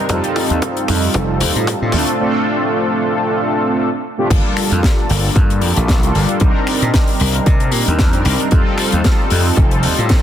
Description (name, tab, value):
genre	nu-disco, nu disco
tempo	114 BPM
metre	4/4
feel	swing 54% on 16ths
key	G minor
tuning	A4 = 441 Hz
part	mellow synth brass	accompaniment	0.0-10.2 s	G3 to Bb4	-17 LUFS	equal	chorus, tape echo
part	gritty slap bass	bass	0.1-10.1 s	F1 to C3	-17 LUFS	equal	overdrive
part	electronic kick drum	drums	0.1-10.2 s	none	-14 LUFS	equal	high-pass filter on kick, studio reverb
part	tight funk drum kit	drums	0.1-10.2 s	crash cymbal, finger snaps, hi-hat, snare drum, toms	-21 LUFS	left 3 dB	high-pass filter on hats, studio reverb, high-pass filter on toms, high-pass filter on cymbals, high-pass filter on snare, high-pass filter on room
room	light reverb, studio ambience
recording	dense, heavily limited modern master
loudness	-13 LUFS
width	side -10 dB against mid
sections	0.0-4.3 A section; 4.3-10.2 B section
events	build-up 0.0-4.3; drum fill 0.0-2.2; drop 4.3-10.2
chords	0.1 F7; 1.9 Dm7; 4.3 Gm7; 6.4 Cm7; 8.5 F7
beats	| 0.10 0.62 1.15 1.68 | 2.20 2.73 3.26 3.78 | 4.31 4.84 5.36 5.89 | 6.42 6.94 7.47 7.99 | 8.52 9.05 9.57 10.10